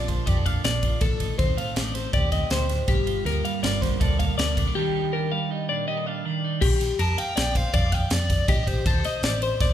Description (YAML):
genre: math rock and midwest emo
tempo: 161 BPM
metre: 5/4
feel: straight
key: unclear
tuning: A4 = 440 Hz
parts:
  - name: clean electric guitar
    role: accompaniment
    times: 0.0-6.6 s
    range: G2 to A4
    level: -29 LUFS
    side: right 7 dB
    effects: spring reverb
  - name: twelve-string electric guitar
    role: arpeggios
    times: 0.0-9.7 s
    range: G4 to F5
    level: -28 LUFS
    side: left 5 dB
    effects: none
  - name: hollow-body short-scale picked electric bass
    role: bass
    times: 0.0-9.7 s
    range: G1 to F2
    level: -27 LUFS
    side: equal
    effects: none
  - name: crisp fusion drum kit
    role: drums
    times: 0.1-9.7 s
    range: crash cymbal, kick drum, ride cymbal, snare drum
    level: -25 LUFS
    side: equal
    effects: none
  - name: overdriven semi-hollow guitar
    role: melody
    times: 7.0-9.7 s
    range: C5 to A5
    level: -30 LUFS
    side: right 1 dB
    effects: none
room: moderate recital hall reverb, RT60 1.6 s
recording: recorded in a church or concert hall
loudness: -21 LUFS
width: side -11 dB against mid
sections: 0.0-6.6 A section; 6.6-9.7 B section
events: break 4.8-6.6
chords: 0.0 Bb; 1.0 Am7b5; 2.9 Gm7; 4.8 Ebmaj7; 6.6 Bb6; 8.5 Am7b5